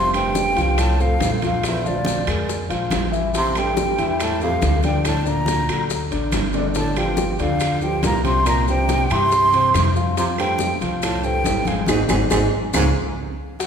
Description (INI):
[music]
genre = Afro-Cuban jazz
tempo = 140 BPM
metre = 4/4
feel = straight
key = F major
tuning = A4 = 441 Hz
[part]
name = breathy concert flute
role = melody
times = 0.0-12.9 s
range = D5 to C6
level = -22 LUFS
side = right 1 dB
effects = none
[part]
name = breathy baritone saxophone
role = second line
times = 0.0-12.9 s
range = D2 to C3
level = -26 LUFS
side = right 3 dB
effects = none
[part]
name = dark concert grand piano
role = accompaniment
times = 0.0-13.7 s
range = C3 to Ab5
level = -25 LUFS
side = left 2 dB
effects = none
[part]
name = upright bass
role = bass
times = 0.0-12.9 s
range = F1 to G2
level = -24 LUFS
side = equal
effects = none
[part]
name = claves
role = percussion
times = 0.1-12.8 s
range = none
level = -36 LUFS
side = right 3 dB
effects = none
[part]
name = congas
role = percussion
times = 0.1-13.7 s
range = none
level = -30 LUFS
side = left 1 dB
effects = none
[part]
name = maracas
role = percussion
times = 0.1-13.7 s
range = none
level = -34 LUFS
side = left 5 dB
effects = none
[part]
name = timbales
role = percussion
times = 0.1-13.7 s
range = none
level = -29 LUFS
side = right 4 dB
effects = none
[part]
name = bongos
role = percussion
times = 0.4-13.7 s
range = none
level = -30 LUFS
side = left 5 dB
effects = none
[sound]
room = wet recital hall reverb, RT60 1.8 s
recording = recorded in a church or concert hall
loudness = -17 LUFS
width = side -7 dB against mid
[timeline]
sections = 0.0-13.6 A section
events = drum fill 6.5, 13.0-13.6; band accent 11.9-13.6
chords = 0.0 Fadd9; 1.6 Bb7; 3.3 A5; 5.1 D; 6.8 G7sus4; 8.5 C; 10.2 Fadd9; 11.9 Ab5; 12.7 Db